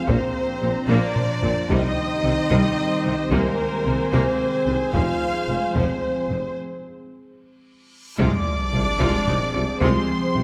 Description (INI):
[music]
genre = cinematic, hybrid orchestral and electronic film score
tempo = 74 BPM (dotted quarters)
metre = 6/8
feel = straight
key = unclear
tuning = A4 = 438 Hz
[part]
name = dark symphonic violin section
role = melody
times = 0.0-10.4 s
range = G5 to D6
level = -35 LUFS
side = equal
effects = none
[part]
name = warm velvety synth lead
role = melody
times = 0.0-6.6 s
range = Bb4 to F5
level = -31 LUFS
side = equal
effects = chorus
[part]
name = rich symphonic violin section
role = second line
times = 0.0-10.4 s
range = Bb4 to F5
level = -32 LUFS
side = equal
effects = none
[part]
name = rich symphonic viola section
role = accompaniment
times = 0.0-10.4 s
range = F3 to C5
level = -31 LUFS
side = equal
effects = none
[part]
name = dark French horn section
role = sustained chords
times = 0.0-10.4 s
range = Bb3 to F4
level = -31 LUFS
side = equal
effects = none
[part]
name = warbly tape-like pad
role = sustained chords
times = 0.0-10.4 s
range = Eb3 to C5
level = -34 LUFS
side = equal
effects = chorus, built-in reverb, phaser
[part]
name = harp-like synth pluck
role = arpeggios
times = 0.1-10.4 s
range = C3 to F4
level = -35 LUFS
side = equal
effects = none
[part]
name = clear symphonic cello section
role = bass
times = 0.1-10.4 s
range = F2 to C3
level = -31 LUFS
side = equal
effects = none
[part]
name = mellow tuba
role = bass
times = 0.1-10.4 s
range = F1 to C2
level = -32 LUFS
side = equal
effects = none
[part]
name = rich symphonic double bass section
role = bass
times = 0.1-10.4 s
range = F1 to C2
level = -31 LUFS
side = equal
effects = none
[part]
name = taiko ensemble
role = drums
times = 0.1-10.4 s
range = none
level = -31 LUFS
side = equal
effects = none
[part]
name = reverse cymbal and sub drop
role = sound effects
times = 8.0-9.8 s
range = none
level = -33 LUFS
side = equal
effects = none
[sound]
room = wet scoring stage reverb, RT60 1.9 s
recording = none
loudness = -22 LUFS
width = mono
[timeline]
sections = 0.0-8.2 A section; 8.2-10.4 B section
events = drum fill 0.9-1.7, 7.4-8.2; break 6.6-8.2; reverse cymbal 8.0; impact 8.2-9.8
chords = 0.1 Bbadd9; 1.7 Cm; 3.3 Abadd9/C; 4.9 Fm; 6.6 N.C.; 8.2 Fm/C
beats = | 0.08 0.89 | 1.70 2.51 | 3.32 4.13 | 4.95 5.76 | 6.57 7.38 | 8.19 9.00 | 9.81